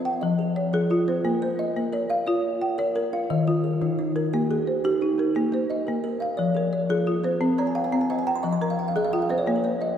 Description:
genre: southern african traditional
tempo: 117 BPM (dotted quarters)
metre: 12/8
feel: straight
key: Bb equiheptatonic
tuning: A4 = 440 Hz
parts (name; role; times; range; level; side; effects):
- folk marimba with medium mallets; arpeggios; 0.0-10.0 s; Eb3 to G5-43c; -23 LUFS; left 2 dB; none
- kalimba; arpeggios; 0.0-10.0 s; Eb3 to Db6+43c; -28 LUFS; right 3 dB; none
room: wet church reverb, RT60 3.7 s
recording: recorded in a church or concert hall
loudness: -22 LUFS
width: side -9 dB against mid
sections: 0.0-10.0 A section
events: kalimba fill 7.4-9.5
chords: 0.2 Fm; 1.2 Bbm; 3.3 Eb; 5.3 Bb5; 6.4 Fm; 7.4 Cm; 8.4 Fm; 9.5 Bb5

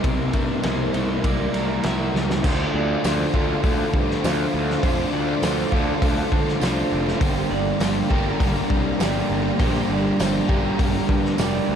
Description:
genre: rock, shoegaze and dream pop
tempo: 101 BPM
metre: 4/4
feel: straight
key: unclear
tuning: A4 = 440 Hz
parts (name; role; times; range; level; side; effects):
- string machine, violas; sustained chords; 0.0-11.8 s; G4 to D6; -33 LUFS; equal; ensemble chorus
- electric guitar through a small old amp; arpeggios; 0.0-11.8 s; G4 to E5; -31 LUFS; right 3 dB; analog chorus, tape echo
- overdriven electric guitar; riff; 0.0-11.8 s; G2 to G4; -25 LUFS; left 10 dB; lush chorus
- overdriven semi-hollow guitar; riff; 0.0-11.8 s; G2 to Bb4; -26 LUFS; right 12 dB; reverse reverb
- fuzz picked electric bass; bass; 0.0-11.8 s; F1 to D3; -26 LUFS; equal; overdrive
- loose indie drum kit; drums; 0.0-11.5 s; crash cymbal, hi-hat, kick drum, ride cymbal, snare drum; -25 LUFS; equal; none
- tambourine; percussion; 3.0-11.5 s; none; -38 LUFS; right 16 dB; none
room: light reverb, small room ambience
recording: dark, warm production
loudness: -19 LUFS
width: side -8 dB against mid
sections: 0.0-2.4 A section; 2.4-11.8 B section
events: drum fill 2.1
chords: 0.0 C7; 2.4 Dm7; 7.2 Gm7

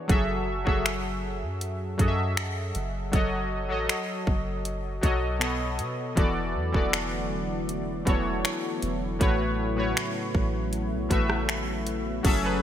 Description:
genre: contemporary R&B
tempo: 79 BPM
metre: 4/4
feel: straight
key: F# minor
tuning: A4 = 444 Hz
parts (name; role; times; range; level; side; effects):
- warm analog keys; accompaniment; 0.0-12.6 s; A2 to E5; -28 LUFS; left 1 dB; chorus
- soft 808-style bass; bass; 0.1-12.6 s; E1 to B2; -32 LUFS; equal; none
- trap drum kit; drums; 0.1-12.4 s; crash cymbal, finger snaps, hi-hat, kick drum, rim click; -27 LUFS; equal; gated reverb
- warm analog pad; sustained chords; 6.2-12.6 s; C#3 to F#4; -33 LUFS; equal; chorus
room: light reverb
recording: bright 1980s-style digital production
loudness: -25 LUFS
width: side -10 dB against mid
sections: 0.1-12.2 A section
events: none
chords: 0.1 F#m7; 3.1 B7/F#; 5.4 B9; 6.2 E9sus4; 9.2 A69

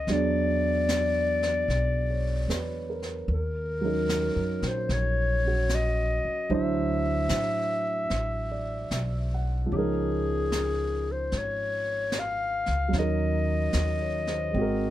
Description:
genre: jazz ballad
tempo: 75 BPM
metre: 4/4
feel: swing 68% on 8ths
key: unclear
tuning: A4 = 440 Hz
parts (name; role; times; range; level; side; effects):
- mellow clarinet; melody; 0.0-14.9 s; G4 to F5; -29 LUFS; left 2 dB; none
- dark baby grand piano; accompaniment; 0.0-14.9 s; F3 to F#5; -30 LUFS; right 3 dB; none
- upright bass; bass; 0.0-14.9 s; Ab1 to Bb2; -29 LUFS; equal; none
- jazz brush drum kit; drums; 0.1-14.9 s; brushed snare drum, hi-hat, snare drum; -36 LUFS; right 1 dB; none
room: little or no reverb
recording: none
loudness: -25 LUFS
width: side -13 dB against mid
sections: 0.0-14.9 A section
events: none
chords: 0.1 E9; 3.3 Ebm7; 6.5 D9; 9.7 Db69; 12.9 Ebm7

